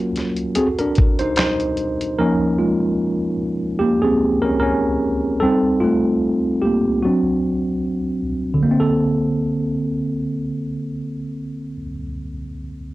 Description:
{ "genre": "lo-fi hip hop", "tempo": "74 BPM", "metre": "4/4", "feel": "swing 56% on 16ths", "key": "Bb major", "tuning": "A4 = 439 Hz", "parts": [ { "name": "tine electric piano", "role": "accompaniment", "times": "0.0-12.9 s", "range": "D3 to C5", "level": "-18 LUFS", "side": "equal", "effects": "medium stereo tremolo, cassette tape" }, { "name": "dusty soul sampler-style drum kit", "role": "drums", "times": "0.2-2.2 s", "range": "handclaps, hi-hat, kick drum, snare drum", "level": "-18 LUFS", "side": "equal", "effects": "vintage 12-bit sampler grit" } ], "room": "moderate small room reverb, RT60 0.5 s", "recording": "cassette tape", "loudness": "-17 LUFS", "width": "side -17 dB against mid", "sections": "0.0-8.7 A section; 8.7-11.9 B section", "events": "tine electric piano solo 0.0-8.7", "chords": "0.0 Gbmaj7; 0.6 Cdim7; 2.2 Db6; 5.4 Am7b5; 7.0 D7/F#; 8.7 Bbmaj9" }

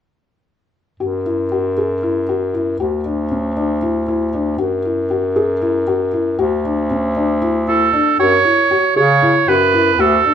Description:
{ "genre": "contemporary instrumental, chamber music in an uneven meter", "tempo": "233 BPM (eighths)", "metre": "7/8", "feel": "straight", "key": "F# minor", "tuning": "A4 = 444 Hz", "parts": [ { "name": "felt-muted upright piano", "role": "arpeggios", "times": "1.0-10.3 s", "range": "C#4 to G#4", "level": "-19 LUFS", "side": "left 4 dB", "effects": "none" }, { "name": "clear bass clarinet", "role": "bass", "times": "1.0-10.2 s", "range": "D2 to C#3", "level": "-19 LUFS", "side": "equal", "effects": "none" }, { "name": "clear oboe", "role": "melody", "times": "7.7-10.3 s", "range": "A4 to C#5", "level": "-13 LUFS", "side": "right 6 dB", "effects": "none" } ], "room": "moderate recital hall reverb, RT60 1.4 s", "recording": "minimal, uncompressed stereo recording", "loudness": "-14 LUFS", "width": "side -8 dB against mid", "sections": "1.0-8.2 A section; 8.2-10.3 B section", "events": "none", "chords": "1.0 N.C.; 2.8 Dsus2; 4.6 N.C.; 6.4 Dsus2; 8.2 F#5" }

